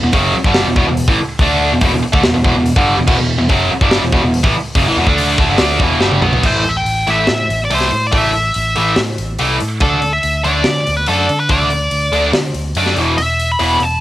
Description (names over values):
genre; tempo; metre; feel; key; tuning
hard rock; 142 BPM; 4/4; straight; E minor; A4 = 437 Hz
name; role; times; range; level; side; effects
tight distorted guitar; riff; 0.0-13.8 s; E2 to D4; -14 LUFS; equal; distortion, cassette tape
picked electric bass; bass; 0.0-14.0 s; E1 to D3; -20 LUFS; equal; none
tight metal drum kit; drums; 0.1-13.9 s; crash cymbal, hi-hat, kick drum, snare drum, toms; -18 LUFS; equal; none
nasal lead guitar with a parked wah; melody; 6.5-14.0 s; A4 to B5; -16 LUFS; equal; overdrive, cassette tape
room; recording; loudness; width
light reverb, studio reverb; home recording on cassette; -12 LUFS; side -14 dB against mid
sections
0.0-6.4 A section; 6.4-14.0 B section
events
drum fill 6.0-6.4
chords
0.0 Em; 6.4 A5; 9.8 D5; 13.0 E5